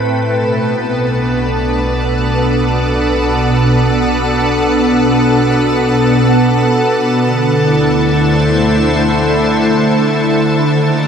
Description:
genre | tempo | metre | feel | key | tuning
ambient | 52 BPM | 3/4 | straight | unclear | A4 = 441 Hz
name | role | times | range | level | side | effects
soft additive organ-like pad | sustained chords | 0.0-11.1 s | A2 to G5 | -12 LUFS | equal | ensemble chorus, built-in reverb, shimmer reverb
deep rumbling drone | bass | 1.1-11.1 s | B1 to Eb2 | -25 LUFS | equal | built-in reverb
rich chamber violin section | texture | 0.3-11.1 s | A4 to A5 | -19 LUFS | left 1 dB | shimmer reverb
room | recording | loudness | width
wet huge ambient reverb, RT60 9.1 s | none | -11 LUFS | side -7 dB against mid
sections
0.0-11.1 A section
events
fade-out on synth drone 0.0-11.1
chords
0.3 Bm7; 7.2 D7

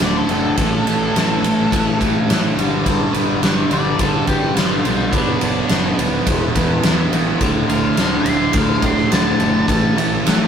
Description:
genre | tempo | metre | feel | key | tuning
classic rock | 106 BPM | 4/4 | straight | D major | A4 = 439 Hz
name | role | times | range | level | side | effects
octave-fuzz lead guitar | melody | 0.0-10.5 s | D4 to C6 | -24 LUFS | left 1 dB | distortion, analog delay
bright tonewheel organ | sustained chords | 0.0-10.5 s | A3 to E5 | -33 LUFS | left 1 dB | none
raw garage guitar | riff | 0.0-10.5 s | D2 to B3 | -22 LUFS | left 5 dB | overdrive, phaser
raw garage guitar | riff | 0.0-10.5 s | D2 to B3 | -20 LUFS | right 3 dB | overdrive
fingered electric bass | bass | 0.0-10.5 s | D1 to A2 | -25 LUFS | left 1 dB | none
huge arena drum kit | drums | 0.0-10.4 s | kick drum, ride cymbal, snare drum | -19 LUFS | equal | none
room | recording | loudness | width
moderate studio reverb, RT60 0.6 s | rough rehearsal-room recording | -14 LUFS | side -8 dB against mid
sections
0.0-10.5 A section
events
lead electric guitar solo 0.0-10.5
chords
0.0 D; 0.6 A; 2.6 G; 5.1 Bm/F#; 6.3 Em; 7.4 D; 9.7 A

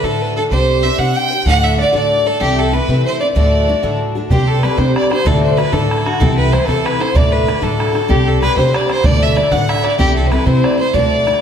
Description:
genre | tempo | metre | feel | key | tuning
celtic folk, Celtic jig | 126 BPM (dotted quarters) | 6/8 | straight | D mixolydian | A4 = 437 Hz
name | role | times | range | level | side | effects
rich fiddle | melody | 0.0-11.4 s | F#4 to G5 | -17 LUFS | right 1 dB | none
dark fiddle | second line | 0.0-11.4 s | F#4 to G5 | -22 LUFS | left 4 dB | none
picked twelve-string acoustic guitar | accompaniment | 0.0-11.4 s | D2 to C5 | -18 LUFS | left 1 dB | none
upright bass | bass | 0.0-11.3 s | C2 to D3 | -17 LUFS | equal | none
bodhran | percussion | 4.3-11.3 s | none | -20 LUFS | right 2 dB | none
room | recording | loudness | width
wet recital hall reverb, RT60 1.5 s | none | -12 LUFS | side -8 dB against mid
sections
0.0-4.3 A section; 4.3-11.4 A section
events
none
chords
0.0 D; 0.5 Csus2; 1.5 D; 2.4 Am/C; 3.4 D; 4.3 Csus2; 5.3 D; 6.2 Am/C; 7.1 D; 8.1 Csus2; 9.0 D; 10.0 Am/C

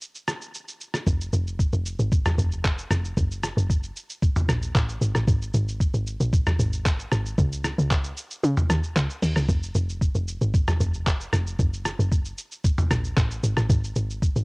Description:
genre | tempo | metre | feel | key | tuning
amapiano | 114 BPM | 4/4 | straight | unclear | A4 = 440 Hz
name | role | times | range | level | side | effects
lo-fi sampler-style drum kit | drums | 0.0-14.4 s | handclaps, hi-hat, kick drum, rim click, shaker, toms | -24 LUFS | equal | none
tight log drum bass | bass | 1.1-14.4 s | F1 to Db3 | -24 LUFS | equal | none
room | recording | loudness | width
little or no reverb | home recording on cassette | -22 LUFS | side -31 dB against mid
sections
0.0-1.1 A section; 1.1-14.4 B section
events
drop 1.1-14.4; kick muted 8.4-9.5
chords
none

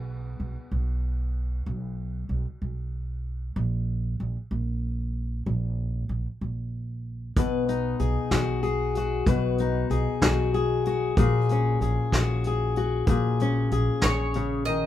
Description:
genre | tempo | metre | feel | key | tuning
acoustic folk duo or small band | 63 BPM (dotted quarters) | 6/8 | straight | B major | A4 = 440 Hz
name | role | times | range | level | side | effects
fingerpicked steel-string acoustic guitar | accompaniment | 0.0-1.7, 7.4-14.9 s | A#2 to B4 | -25 LUFS | left 4 dB | none
upright bass | bass | 0.0-14.9 s | A#1 to B1 | -28 LUFS | right 1 dB | none
vintage brush drum kit | drums | 7.4-14.8 s | hi-hat, kick drum, snare drum | -25 LUFS | right 1 dB | none
bowl-back mandolin | second line | 14.0-14.9 s | C#5 to D#5 | -29 LUFS | right 1 dB | none
room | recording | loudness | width
light reverb | minimal, uncompressed stereo recording | -24 LUFS | side -12 dB against mid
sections
0.0-14.9 A section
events
none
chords
0.0 N.C.; 7.4 B; 11.2 F#add9/A#

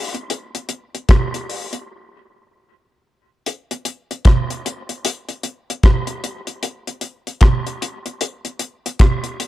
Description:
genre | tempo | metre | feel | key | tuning
reggae | 76 BPM | 4/4 | swing 63% on 16ths | none | none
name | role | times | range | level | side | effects
deep reggae drum kit | drums | 0.1-9.5 s | hi-hat, kick drum, rim click | -16 LUFS | equal | none
room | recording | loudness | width
light reverb | dark, warm production | -18 LUFS | side -15 dB against mid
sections
0.0-3.5 A section; 3.5-9.5 B section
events
break 1.9-3.5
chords
none

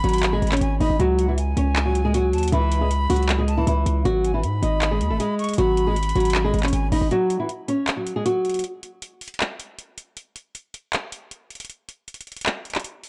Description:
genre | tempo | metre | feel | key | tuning
hip hop, trap | 157 BPM | 4/4 | half-time | unclear | A4 = 439 Hz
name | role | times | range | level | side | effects
flamenco guitar | melody | 0.0-8.6 s | E3 to D#5 | -25 LUFS | equal | low-pass filter
breathy bright jazz flute | second line | 0.0-7.1 s | F#5 to C#6 | -32 LUFS | equal | delay
distorted 808-style bass | bass | 0.0-7.1 s | G#1 to G#2 | -24 LUFS | equal | distortion
trap drum kit | drums | 0.0-13.1 s | handclaps, hi-hat | -30 LUFS | equal | vintage 12-bit sampler grit
room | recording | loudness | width
light reverb, small room reverb | dark, warm production | -22 LUFS | mono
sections
0.0-7.1 A section; 7.1-13.1 B section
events
break 7.1-13.1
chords
0.0 G#m; 1.0 C#m7; 4.1 G#m; 7.1 N.C.

